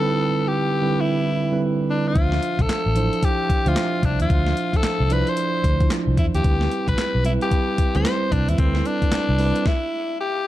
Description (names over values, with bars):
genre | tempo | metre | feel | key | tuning
R&B, new jack swing | 112 BPM | 4/4 | swing 62% on 16ths | unclear | A4 = 440 Hz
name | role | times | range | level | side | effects
raspy alto saxophone | melody | 0.0-10.5 s | C4 to C5 | -24 LUFS | left 2 dB | none
mellow tine electric piano | accompaniment | 0.0-9.7 s | D3 to E5 | -24 LUFS | right 3 dB | none
vintage muted fingered electric bass | bass | 2.2-9.5 s | A1 to E2 | -22 LUFS | equal | none
crisp 8-bit digital drum machine | drums | 2.2-9.8 s | handclaps, hi-hat, kick drum, snare drum | -23 LUFS | equal | none
room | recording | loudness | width
light reverb | dark, warm production | -18 LUFS | side -14 dB against mid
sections
0.0-10.5 A section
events
stop 9.7-10.5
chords
0.0 Cmaj7/D; 2.2 Dm9; 6.4 Cmaj7